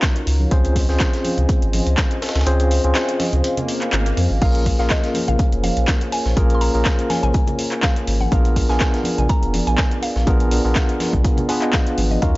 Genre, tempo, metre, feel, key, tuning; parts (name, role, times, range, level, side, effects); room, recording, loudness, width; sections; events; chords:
deep house; 123 BPM; 4/4; swing 54% on 16ths; Bb minor; A4 = 440 Hz
hollow soft pad; sustained chords; 0.0-12.4 s; Cb4 to Bb5; -32 LUFS; equal; chorus, sidechain pumping
tine electric piano; stabs; 0.0-12.4 s; Bb3 to C5; -23 LUFS; equal; medium tremolo, sidechain pumping
breakbeat sampler-style drum kit; drums; 0.0-12.3 s; hi-hat, snare drum; -32 LUFS; equal; high-pass filter on snare, high-pass filter on hats, high-pass filter on room
deep house drum kit; drums; 0.0-12.3 s; crash cymbal, handclaps, hi-hat; -26 LUFS; equal; overdrive
electronic kick drum; drums; 0.0-12.3 s; -19 LUFS; equal; overdrive
warm sub bass; bass; 0.3-12.4 s; F1 to F2; -19 LUFS; equal; sidechain pumping
congas; percussion; 0.4-12.2 s; -29 LUFS; right 1 dB
swell; sound effects; 3.6-4.4 s; -29 LUFS; left 2 dB
mallet-like synth pluck; melody; 4.4-12.4 s; Eb5 to C6; -27 LUFS; equal; chorus, phaser, analog delay
egg shaker; percussion; 4.4-12.3 s; -45 LUFS; left 1 dB
digital ambience; dry, gritty hardware recording, transformer saturation, nothing above 7.6 kHz; -16 LUFS; side -20 dB against mid
0.0-12.4 A section
kick drops out 2.5-4.4; swell 3.6-4.4
0.0 Ebm9; 0.5 Dbmaj7; 4.4 Bbm7; 8.3 Bb7b9